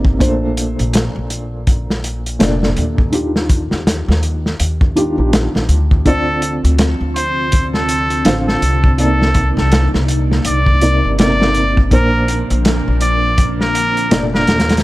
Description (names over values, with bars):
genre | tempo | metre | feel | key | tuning
trip hop | 82 BPM | 4/4 | swing 60% on 16ths | unclear | A4 = 441 Hz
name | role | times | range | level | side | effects
felt-muted upright piano | accompaniment | 0.0-14.8 s | Bb2 to F5 | -19 LUFS | equal | tremolo, tape echo
upright bass | bass | 0.0-14.8 s | F1 to Eb2 | -17 LUFS | equal | none
crunchy breakbeat drum kit | drums | 0.0-14.8 s | hi-hat, kick drum, snare drum | -16 LUFS | equal | none
string machine, cellos | sustained chords | 6.0-14.8 s | Bb3 to D5 | -24 LUFS | equal | ensemble chorus
trumpet with straight mute | melody | 6.1-14.8 s | A4 to D5 | -18 LUFS | equal | tape echo
room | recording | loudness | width
studio reverb | none | -12 LUFS | side -18 dB against mid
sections
0.0-14.8 A section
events
none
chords
0.2 Bbmaj9; 3.1 Ebmaj9; 6.1 Dm7; 9.0 Cm9; 11.9 Bbmaj9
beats
| 0.20 0.93 1.67 2.40 | 3.13 3.86 4.59 5.32 | 6.06 6.79 7.52 8.25 | 8.98 9.71 10.45 11.18 | 11.91 12.64 13.37 14.10